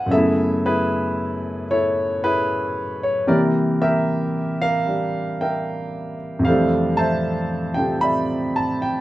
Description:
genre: solo jazz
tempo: 76 BPM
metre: 4/4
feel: swing 68% on 8ths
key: unclear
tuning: A4 = 439 Hz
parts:
  - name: warm grand piano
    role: solo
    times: 0.0-9.0 s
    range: F2 to Cb6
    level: -19 LUFS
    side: equal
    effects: none
room: moderate studio reverb, RT60 0.5 s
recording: minimal, uncompressed stereo recording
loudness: -19 LUFS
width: side -16 dB against mid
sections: 0.0-9.0 A section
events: none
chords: 0.1 Gbm11; 3.3 C7; 6.5 Fmaj13

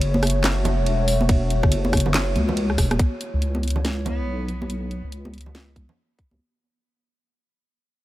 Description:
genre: deep dubstep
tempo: 141 BPM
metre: 4/4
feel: swing 61% on 16ths, half-time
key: C# minor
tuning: A4 = 440 Hz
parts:
  - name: dark analog pad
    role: sustained chords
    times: 0.0-6.4 s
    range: G#3 to C#5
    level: -28 LUFS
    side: equal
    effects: chorus, phaser
  - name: deep soft wobble bass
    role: bass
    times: 0.0-6.4 s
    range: E1 to C#2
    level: -23 LUFS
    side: equal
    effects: chorus, tube saturation
  - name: garage drum kit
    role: drums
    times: 0.0-6.3 s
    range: handclaps, hi-hat, ride cymbal, rim click, snare drum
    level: -27 LUFS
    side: equal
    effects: none
  - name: congas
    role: percussion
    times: 0.1-6.4 s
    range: none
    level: -29 LUFS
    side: right 1 dB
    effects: dub echo
  - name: electronic kick drum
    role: drums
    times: 1.3-3.1, 5.8-6.3 s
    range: none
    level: -19 LUFS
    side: equal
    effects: none
  - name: rich cello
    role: melody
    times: 4.1-4.7 s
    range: B3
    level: -39 LUFS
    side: equal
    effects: dub echo
room: digital ambience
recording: none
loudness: -19 LUFS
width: side -16 dB against mid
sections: 0.0-3.0 A section; 3.0-6.4 B section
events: drop 0.0-3.0; drum fill 2.8; fade-out 3.0-6.4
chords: 0.0 F#m; 3.0 C#m

